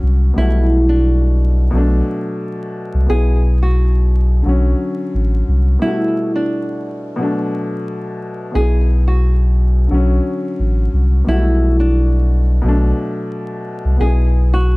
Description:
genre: hip hop, boom-bap hip-hop.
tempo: 88 BPM.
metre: 4/4.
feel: swing 55% on 16ths.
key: B minor.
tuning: A4 = 440 Hz.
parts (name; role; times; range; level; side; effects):
dark upright piano; accompaniment; 0.0-14.8 s; B2 to G#4; -22 LUFS; left 1 dB; cassette tape, high-pass filter, low-pass filter.
saturated sub bass; bass; 0.0-14.8 s; A1 to C2; -13 LUFS; equal; none.
nylon-string guitar; melody; 0.4-14.8 s; D4 to G#4; -21 LUFS; equal; high-pass filter, low-pass filter.
room: light reverb.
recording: dark, warm production, vinyl crackle.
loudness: -13 LUFS.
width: side -24 dB against mid.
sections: 0.0-14.8 A section.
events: break 5.8-8.6.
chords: 0.4 Gmaj7/B; 1.7 Bm7; 3.1 Eadd9/B; 4.5 Dmaj7/B; 5.8 Gmaj7/B; 7.2 Bm7; 8.6 Eadd9/B; 9.9 Dmaj7/B; 11.3 Gmaj7/B; 12.6 Bm7; 14.0 Eadd9/B.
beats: | 0.37 1.05 1.74 2.42 | 3.10 3.78 4.46 5.14 | 5.83 6.51 7.19 7.87 | 8.55 9.23 9.92 10.60 | 11.28 11.96 12.64 13.33 | 14.01 14.69.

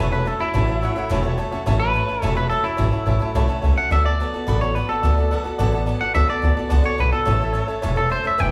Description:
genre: rockabilly.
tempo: 214 BPM.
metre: 4/4.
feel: straight.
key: A major.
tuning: A4 = 440 Hz.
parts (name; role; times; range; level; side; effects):
twangy electric guitar; melody; 0.0-8.5 s; E4 to G5; -25 LUFS; equal; none.
picked acoustic archtop guitar; accompaniment; 0.0-8.5 s; A2 to A4; -30 LUFS; equal; none.
warm upright piano; accompaniment; 0.0-8.5 s; B4 to C#6; -31 LUFS; equal; none.
upright bass; bass; 0.0-8.5 s; E1 to D2; -23 LUFS; equal; none.
room: wet large studio reverb, RT60 1.2 s.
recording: band playing live in one room.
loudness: -20 LUFS.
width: mono.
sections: 0.0-8.5 A section.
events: upright piano fill 1.1-1.7.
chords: 0.0 A6; 3.9 D6; 7.3 A6.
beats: 0.26 | 0.54 0.82 1.10 1.39 | 1.67 1.95 2.23 2.51 | 2.79 3.07 3.35 3.63 | 3.91 4.19 4.47 4.75 | 5.03 5.31 5.59 5.87 | 6.15 6.43 6.71 6.99 | 7.27 7.55 7.83 8.11 | 8.39.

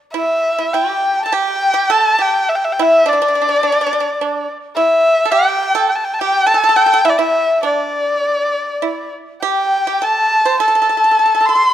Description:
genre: chinese traditional, Chinese chamber ensemble.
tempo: 104 BPM.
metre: 4/4.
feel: rubato.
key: D shang mode.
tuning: A4 = 438 Hz.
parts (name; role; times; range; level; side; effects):
dark erhu; melody; 0.1-11.7 s; D5 to C6; -15 LUFS; equal; none.
pipa; second line; 0.1-11.6 s; D4 to C5; -21 LUFS; right 9 dB; none.
mellow xiao; second line; 0.2-11.7 s; D5 to C6; -18 LUFS; left 2 dB; none.
room: light reverb.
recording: none.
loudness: -12 LUFS.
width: side -11 dB against mid.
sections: 0.1-11.7 A section.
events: none.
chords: none.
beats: | 0.15 0.74 1.32 1.90 | 2.48 3.06 3.63 4.20 | 4.76 5.33 5.91 6.48 | 7.05 7.64 8.23 8.83 | 9.43 10.03 10.61 11.19.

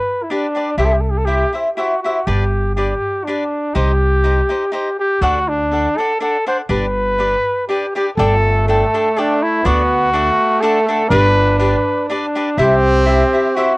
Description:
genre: mexican folk, mariachi.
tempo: 122 BPM.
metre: 3/4.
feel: swing 54% on 8ths.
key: G major.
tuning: A4 = 441 Hz.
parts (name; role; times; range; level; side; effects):
warm trumpet; melody; 0.0-13.8 s; D4 to C5; -17 LUFS; equal; cassette tape.
cavaquinho; accompaniment; 0.3-13.7 s; D4 to G5; -20 LUFS; left 1 dB; plate reverb.
upright bass; bass; 0.8-13.2 s; G1 to D2; -18 LUFS; equal; none.
mellow trumpet; second line; 8.2-13.8 s; A3 to D4; -19 LUFS; right 2 dB; plate reverb, tape echo.
room: light reverb.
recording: home recording on cassette.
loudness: -14 LUFS.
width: side -24 dB against mid.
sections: 0.0-8.2 A section; 8.2-13.8 A section.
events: none.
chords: 0.0 G; 0.8 C; 2.3 G; 3.8 Cm; 5.2 D; 6.7 G; 8.2 Gsus2; 9.7 D; 11.1 G; 12.6 C.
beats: 0.29 | 0.78 1.28 1.78 | 2.28 2.77 3.27 | 3.76 4.25 4.74 | 5.22 5.71 6.20 | 6.69 7.19 7.68 | 8.18 8.68 9.17 | 9.66 10.14 10.63 | 11.11 11.59 12.08 | 12.57 13.06 13.55.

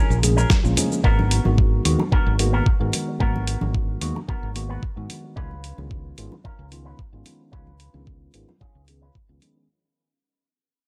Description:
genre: nu-disco, nu disco.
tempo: 111 BPM.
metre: 4/4.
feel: straight.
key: unclear.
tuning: A4 = 440 Hz.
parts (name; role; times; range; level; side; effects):
electric guitar with an envelope filter; riff; 0.0-9.6 s; B3 to B4; -33 LUFS; equal; lush chorus, low-pass filter, dub echo.
fingered electric bass; bass; 0.1-9.4 s; G#1 to G#2; -26 LUFS; equal; sidechain pumping.
dusty soul sampler-style drum kit; drums; 0.1-9.5 s; hi-hat, shaker, snare drum; -28 LUFS; equal; none.
bright tine electric piano; accompaniment; 0.2-9.7 s; D#3 to A#4; -30 LUFS; equal; phaser, sidechain pumping, low-pass filter, dub echo.
congas; percussion; 0.2-9.5 s; none; -33 LUFS; equal; none.
electronic kick drum; drums; 0.5-9.3 s; none; -23 LUFS; equal; none.
room: little or no reverb.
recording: none.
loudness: -21 LUFS.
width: mono.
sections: 0.0-9.7 A section.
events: fade-out 0.0-9.7; filter sweep on clean electric guitar 0.0-9.7; filter sweep on tine electric piano 0.0-9.7.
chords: 0.0 A#m7; 1.0 G#m9; 5.4 C#7.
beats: 0.50 | 1.04 1.58 2.12 2.66 | 3.20 3.75 4.29 4.83 | 5.37 5.91 6.45 6.99 | 7.53 8.07 8.61 9.15.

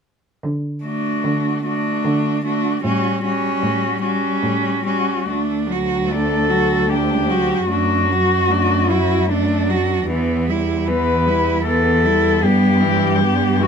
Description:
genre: classical, lyrical piece for cello ensemble.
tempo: 75 BPM.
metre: 3/4.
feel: rubato.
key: D major.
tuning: A4 = 440 Hz.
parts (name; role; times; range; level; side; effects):
warm cello; bass; 0.4-13.7 s; D2 to D3; -22 LUFS; right 1 dB; none.
rich cello; second line; 0.8-13.7 s; G3 to F#4; -21 LUFS; right 7 dB; none.
rich cello; accompaniment; 0.8-13.7 s; E3 to A3; -23 LUFS; left 4 dB; none.
rich cello; melody; 0.9-13.7 s; D4 to B4; -20 LUFS; left 5 dB; none.
room: moderate studio reverb, RT60 0.8 s.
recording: minimal, uncompressed stereo recording.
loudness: -16 LUFS.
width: side -6 dB against mid.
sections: 0.4-5.3 A section; 5.3-13.7 B section.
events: none.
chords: 0.4 D; 2.8 A6; 5.3 D; 7.7 D/F#; 10.1 Em; 12.4 Em/G.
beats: | 0.44 1.25 2.05 | 2.85 3.64 4.44 | 5.28 6.09 6.88 | 7.69 8.50 9.30 | 10.09 10.87 11.65 | 12.43 13.22.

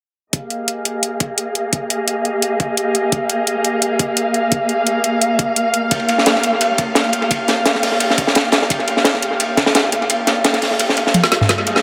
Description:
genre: liquid drum and bass.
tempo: 172 BPM.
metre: 4/4.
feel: swing 53% on 16ths.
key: F minor.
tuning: A4 = 442 Hz.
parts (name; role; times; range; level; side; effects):
dark chamber string section; sustained chords; 0.3-11.8 s; Bb3 to F5; -21 LUFS; equal; low-pass filter.
electronic kick drum; drums; 0.3-11.6 s; none; -25 LUFS; equal; high-pass filter on kick, high-pass filter on room.
garage drum kit; drums; 0.3-11.8 s; hi-hat, snare drum, toms; -20 LUFS; equal; analog delay.
crunchy breakbeat drum kit; drums; 5.9-11.8 s; hi-hat, ride cymbal, snare drum; -18 LUFS; equal; high-pass filter on cymbals, high-pass filter on hats, high-pass filter on snare, high-pass filter on room, analog delay.
riser; sound effects; 11.6-11.8 s; none; -32 LUFS; equal; none.
room: wet spring reverb, RT60 1.9 s.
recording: echo-heavy mix.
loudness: -17 LUFS.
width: mono.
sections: 0.3-11.5 A section.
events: filter sweep on string section 0.3-11.5; kick drops out 10.1-11.5; drum fill 11.1-11.5, 11.5-11.8; riser 11.6.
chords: 0.3 Fm11; 5.9 Gm7/Bb.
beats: | 0.33 0.68 1.03 1.38 | 1.73 2.08 2.42 2.77 | 3.12 3.47 3.82 4.17 | 4.52 4.87 5.21 5.56 | 5.91 6.26 6.61 6.96 | 7.31 7.66 8.01 8.35 | 8.70 9.05 9.40 9.75 | 10.10 10.45 10.80 11.14 | 11.49.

